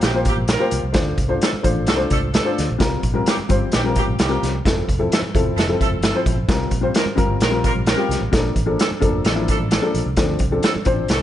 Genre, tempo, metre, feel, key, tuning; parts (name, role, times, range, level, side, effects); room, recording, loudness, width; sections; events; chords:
uptempo 1960s-style soul; 130 BPM; 4/4; straight; C mixolydian; A4 = 443 Hz
clear saxophone section; second line; 0.0-11.2 s; C3 to Bb4; -26 LUFS; right 2 dB
vintage muted fingered electric bass; bass; 0.0-11.2 s; E1 to D2; -24 LUFS; equal
vintage drum kit; drums; 0.0-11.2 s; hi-hat, kick drum, snare drum; -20 LUFS; equal
congas; percussion; 0.0-11.0 s; -34 LUFS; right 4 dB
dark upright piano; accompaniment; 0.1-11.2 s; F3 to C5; -22 LUFS; left 2 dB
light reverb; nothing above 10.3 kHz; -16 LUFS; side -12 dB against mid
0.0-11.2 A section
0.0 C7sus4; 0.9 Dm7; 2.8 C7sus4; 4.6 Fmaj7; 6.5 C7sus4; 8.3 Bbmaj7; 10.2 Dm7